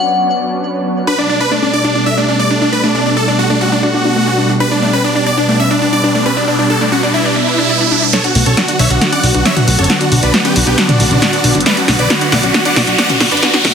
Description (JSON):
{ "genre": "uplifting trance", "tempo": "136 BPM", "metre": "4/4", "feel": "straight", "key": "unclear", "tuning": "A4 = 440 Hz", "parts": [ { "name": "glassy synth bell", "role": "second line", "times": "0.0-1.0 s", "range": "F#5", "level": "-16 LUFS", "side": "left 3 dB", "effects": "chorus, ping-pong delay" }, { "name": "analog string pad", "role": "sustained chords", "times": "0.0-13.7 s", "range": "B2 to D4", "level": "-17 LUFS", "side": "equal", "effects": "ensemble chorus" }, { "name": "big supersaw lead", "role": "melody", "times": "1.1-13.7 s", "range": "B3 to F#5", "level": "-14 LUFS", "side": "right 1 dB", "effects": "none" }, { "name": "wide unison pluck", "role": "arpeggios", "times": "1.1-13.7 s", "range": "A3 to D5", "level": "-19 LUFS", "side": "left 2 dB", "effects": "ping-pong delay" }, { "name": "riser", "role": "sound effects", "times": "6.0-13.7 s", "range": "none", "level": "-20 LUFS", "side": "right 2 dB", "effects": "none" }, { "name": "punchy analog drum machine", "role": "drums", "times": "8.1-13.7 s", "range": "hi-hat, snare drum, toms", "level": "-14 LUFS", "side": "equal", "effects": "overdrive" }, { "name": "fat analog bass", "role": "bass", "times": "8.4-13.7 s", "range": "F#1 to B1", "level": "-16 LUFS", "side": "equal", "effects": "none" } ], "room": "moderate digital room reverb, RT60 1.1 s", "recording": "dense, heavily limited modern master, high-pass filter", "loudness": "-10 LUFS", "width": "side -7 dB against mid", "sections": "0.0-8.1 A section; 8.1-13.7 B section", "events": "riser 6.0-8.1, 8.1-13.7; build-up 8.1-13.7; drum fill 8.1-13.7; filter sweep on synth arpeggio sound 8.1-13.7", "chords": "0.0 Bmadd9; 1.1 Gadd9; 8.1 Bm", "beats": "0.19 0.63 | 1.07 1.51 1.96 2.40 | 2.84 3.28 3.72 4.16 | 4.60 5.04 5.49 5.93 | 6.37 6.81 7.25 7.69 | 8.13 8.57 9.02 9.46 | 9.90 10.34 10.78 11.22 | 11.66 12.10 12.54 12.99 | 13.43" }